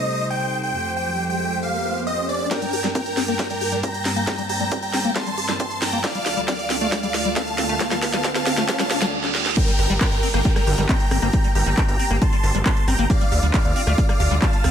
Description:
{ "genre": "uplifting trance", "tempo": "136 BPM", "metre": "4/4", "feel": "straight", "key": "G minor", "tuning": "A4 = 440 Hz", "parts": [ { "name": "big supersaw lead", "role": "melody", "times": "0.0-14.7 s", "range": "Bb4 to C6", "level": "-24 LUFS", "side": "right 1 dB", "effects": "sidechain pumping, ping-pong delay" }, { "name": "bright chamber string section", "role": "sustained chords", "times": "0.0-14.7 s", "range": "D2 to A5", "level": "-30 LUFS", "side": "equal", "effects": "vintage 12-bit sampler grit, sidechain pumping" }, { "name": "riser, reverse cymbal and downlifter", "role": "sound effects", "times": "0.8-13.1 s", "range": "none", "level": "-30 LUFS", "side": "equal", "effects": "none" }, { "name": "liquid acid bass", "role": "arpeggios", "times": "2.5-14.7 s", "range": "G3 to G4", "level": "-28 LUFS", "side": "left 2 dB", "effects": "phaser, sidechain pumping, dub echo" }, { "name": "electronic kick drum", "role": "drums", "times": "2.5-14.5 s", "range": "none", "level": "-21 LUFS", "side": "equal", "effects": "high-pass filter on kick, high-pass filter on room" }, { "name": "techno drum kit", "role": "drums", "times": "2.5-14.7 s", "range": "crash cymbal, handclaps, hi-hat, rim click, snare drum", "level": "-26 LUFS", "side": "equal", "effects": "high-pass filter on snare, high-pass filter on hats, high-pass filter on cymbals, high-pass filter on room" }, { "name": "gritty driven synth bass", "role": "bass", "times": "9.8-14.7 s", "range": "G1 to D2", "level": "-21 LUFS", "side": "equal", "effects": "tube saturation, sidechain pumping" } ], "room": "light reverb, digital ambience", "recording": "none", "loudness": "-18 LUFS", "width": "side -9 dB against mid", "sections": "0.0-2.5 A section; 2.5-9.6 B section; 9.6-14.7 C section", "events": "riser 0.8-2.5, 2.5-9.1; build-up 2.5-9.6; drum fill 2.5-9.1, 9.2-9.6; filter sweep on acid bass 2.5-9.6; reverse cymbal 8.7-9.6; drop 9.6-14.7", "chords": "0.0 Cm; 0.7 Fadd9; 2.5 Gmadd9; 6.0 Dm; 9.6 Gmadd9; 13.1 Dm", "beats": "0.30 | 0.74 1.19 1.63 2.07 | 2.51 2.95 3.39 3.83 | 4.27 4.71 5.16 5.60 | 6.04 6.48 6.92 7.36 | 7.80 8.24 8.69 9.13 | 9.57 10.01 10.45 10.89 | 11.33 11.77 12.21 12.66 | 13.10 13.54 13.98 14.42" }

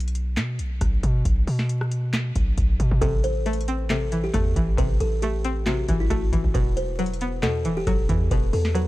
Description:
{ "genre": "hip hop, trap", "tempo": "136 BPM", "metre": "4/4", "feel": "half-time", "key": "unclear", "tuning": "A4 = 440 Hz", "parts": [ { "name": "hard-hitting 808-style bass", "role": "bass", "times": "0.0-8.9 s", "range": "E1 to B2", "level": "-25 LUFS", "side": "equal", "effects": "none" }, { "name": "booming analog drum machine", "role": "drums", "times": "0.0-8.9 s", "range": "handclaps, hi-hat, kick drum, rim click, snare drum", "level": "-24 LUFS", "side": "equal", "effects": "none" }, { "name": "buzzing kalimba", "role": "melody", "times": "3.0-8.9 s", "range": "E4 to C5", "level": "-28 LUFS", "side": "left 1 dB", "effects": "tape echo" }, { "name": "string-like resonator pluck", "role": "accompaniment", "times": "3.0-8.9 s", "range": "B2 to C4", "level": "-28 LUFS", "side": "equal", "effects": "chorus" } ], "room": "digital ambience", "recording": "dark, warm production, vinyl crackle", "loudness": "-21 LUFS", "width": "side -17 dB against mid", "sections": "0.0-8.9 A section", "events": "break 0.0-3.0", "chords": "0.0 B5; 3.0 Am; 6.5 Esus2", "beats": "0.37 0.81 | 1.25 1.69 2.14 2.58 | 3.02 3.46 3.90 4.34 | 4.78 5.22 5.67 6.11 | 6.55 6.99 7.43 7.87 | 8.31 8.75" }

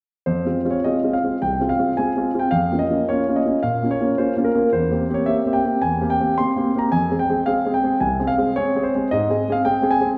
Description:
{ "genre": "classical-period piano sonatina", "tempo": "109 BPM", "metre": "4/4", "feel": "rubato", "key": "F minor", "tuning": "A4 = 441 Hz", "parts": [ { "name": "warm concert grand piano", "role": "solo", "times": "0.3-10.1 s", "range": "C2 to C6", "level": "-20 LUFS", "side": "equal", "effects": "none" } ], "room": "wet recital hall reverb, RT60 1.4 s", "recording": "heard from further back in the room", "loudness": "-20 LUFS", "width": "mono", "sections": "0.3-10.2 A section", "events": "none", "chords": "0.3 Fm; 2.5 Bbm/F; 4.7 C7/E; 6.9 Fm; 9.1 Ab", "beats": "| 0.28 0.84 1.41 1.97 | 2.53 3.09 3.64 4.19 | 4.74 5.28 5.83 6.38 | 6.92 7.47 8.02 8.57 | 9.11 9.65" }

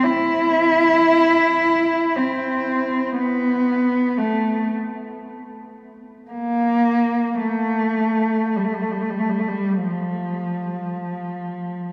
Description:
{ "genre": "classical, free, expressive piece for unaccompanied cello", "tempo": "42-61 BPM", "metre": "3/4", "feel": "rubato", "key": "unclear", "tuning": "A4 = 443 Hz", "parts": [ { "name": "warm cello", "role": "solo", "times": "0.0-11.9 s", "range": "F3 to E4", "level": "-21 LUFS", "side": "equal", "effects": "none" } ], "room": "wet cathedral reverb, RT60 5.0 s", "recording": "heard from further back in the room", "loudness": "-20 LUFS", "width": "mono", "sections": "0.0-11.9 A section", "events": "none", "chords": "none", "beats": "| 0.04 1.08 2.15 | 3.16 4.18 5.26 | 6.31 7.41 8.56 | 9.87 11.24" }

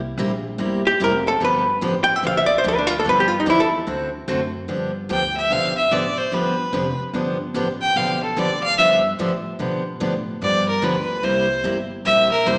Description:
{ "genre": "country, western swing", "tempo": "146 BPM", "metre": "4/4", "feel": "swing 64% on 8ths", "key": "G mixolydian", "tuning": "A4 = 440 Hz", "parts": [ { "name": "upright bass", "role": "bass", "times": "0.0-12.6 s", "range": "F1 to B2", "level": "-33 LUFS", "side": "equal", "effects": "none" }, { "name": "picked steel-string acoustic guitar", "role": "accompaniment", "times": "0.2-12.6 s", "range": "C3 to A4", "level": "-26 LUFS", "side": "equal", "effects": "plate reverb, slapback echo" }, { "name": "archtop guitar, miked and amplified", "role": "melody", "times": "0.9-3.7 s", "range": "D4 to G5", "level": "-20 LUFS", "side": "equal", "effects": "plate reverb, slapback echo" }, { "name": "clear fiddle", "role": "second line", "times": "5.1-12.6 s", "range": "A4 to G5", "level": "-21 LUFS", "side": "equal", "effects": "plate reverb, slapback echo" } ], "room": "wet club reverb, RT60 0.7 s", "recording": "live gig heard through the venue's PA, recital hall reverb, small speaker sound", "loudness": "-20 LUFS", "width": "mono", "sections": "0.0-4.7 A section; 4.7-12.6 A section", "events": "hollow-body jazz guitar solo 0.0-4.7; fiddle solo 4.7-12.6", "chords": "0.0 C7; 1.4 G9; 3.9 D7; 4.7 G9; 11.2 C7", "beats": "0.18 0.59 1.00 | 1.41 1.82 2.23 2.64 | 3.05 3.46 3.87 4.28 | 4.69 5.10 5.51 5.92 | 6.33 6.74 7.15 7.56 | 7.97 8.38 8.79 9.20 | 9.60 10.01 10.42 10.83 | 11.24 11.65 12.06 12.47" }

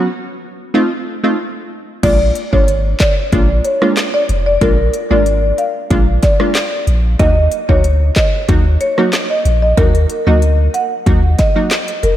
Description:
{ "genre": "dancehall", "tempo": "93 BPM", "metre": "4/4", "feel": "straight", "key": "unclear", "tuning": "A4 = 436 Hz", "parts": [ { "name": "wavetable chord stab", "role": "accompaniment", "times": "0.0-11.7 s", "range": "Gb3 to Gb4", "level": "-19 LUFS", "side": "right 1 dB", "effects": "sidechain pumping" }, { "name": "marimba with medium mallets", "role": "melody", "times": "2.0-12.2 s", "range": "Bb4 to Gb5", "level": "-17 LUFS", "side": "left 1 dB", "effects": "diffuse ambient delay" }, { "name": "punchy sub bass", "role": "bass", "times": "2.0-12.2 s", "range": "F1 to Eb2", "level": "-13 LUFS", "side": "equal", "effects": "none" }, { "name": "afro-pop drum kit", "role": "drums", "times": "2.0-12.2 s", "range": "crash cymbal, handclaps, hi-hat, kick drum, rim click, snare drum", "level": "-16 LUFS", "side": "equal", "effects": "none" } ], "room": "moderate lush hall reverb, RT60 2.5 s", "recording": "dreamy mix soaked in reverb", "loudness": "-11 LUFS", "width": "side -12 dB against mid", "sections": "0.0-2.0 A section; 2.0-12.2 B section", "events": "break 0.0-2.0", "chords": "0.0 Bsus2; 0.7 F7; 2.0 Bb7; 7.2 Ebm", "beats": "0.10 0.74 1.39 | 2.03 2.68 3.32 3.97 | 4.62 5.26 5.91 6.55 | 7.20 7.84 8.49 9.13 | 9.78 10.42 11.07 11.71" }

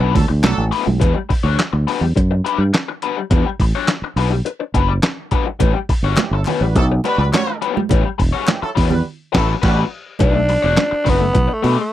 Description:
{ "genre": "funk", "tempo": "104 BPM", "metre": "4/4", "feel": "straight", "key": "unclear", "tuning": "A4 = 440 Hz", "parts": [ { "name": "raw garage guitar", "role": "accompaniment", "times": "0.0-11.8 s", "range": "G3 to C#5", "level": "-21 LUFS", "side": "left 9 dB", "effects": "wah, overdrive" }, { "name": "fingered electric bass", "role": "bass", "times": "0.0-11.8 s", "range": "E1 to B2", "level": "-17 LUFS", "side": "equal", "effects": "none" }, { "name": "clear horn section", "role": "second line", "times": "0.1-0.6, 6.0-9.8 s", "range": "C#3 to C#5", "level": "-24 LUFS", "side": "right 3 dB", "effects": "none" }, { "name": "dusty soul sampler-style drum kit", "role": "drums", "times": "0.2-11.8 s", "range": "crash cymbal, handclaps, hi-hat, kick drum, snare drum", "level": "-19 LUFS", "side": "equal", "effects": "none" }, { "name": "congas", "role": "percussion", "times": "0.2-1.0, 5.6-11.8 s", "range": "none", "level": "-24 LUFS", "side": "right 10 dB", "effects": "none" }, { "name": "group handclap", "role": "percussion", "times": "0.4-0.6, 6.2-8.6 s", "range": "none", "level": "-30 LUFS", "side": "left 2 dB", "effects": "none" }, { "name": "raspy tenor saxophone", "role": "melody", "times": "10.2-11.9 s", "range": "A3 to D4", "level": "-18 LUFS", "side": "equal", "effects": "none" } ], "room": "little or no reverb", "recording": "dry, close 1970s-style studio recording", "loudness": "-15 LUFS", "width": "side -13 dB against mid", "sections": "0.0-1.0 A section; 1.0-10.2 B section; 10.2-11.9 C section", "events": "band accent 9.1-10.2; tenor saxophone solo 10.2-11.9", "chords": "0.0 Bm7; 1.0 Em9 (rootless); 5.6 A13; 10.2 Bm7", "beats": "0.44 | 1.01 1.59 2.16 2.74 | 3.31 3.89 4.46 5.04 | 5.61 6.18 6.76 7.33 | 7.91 8.48 9.06 9.63 | 10.21 10.78 11.35" }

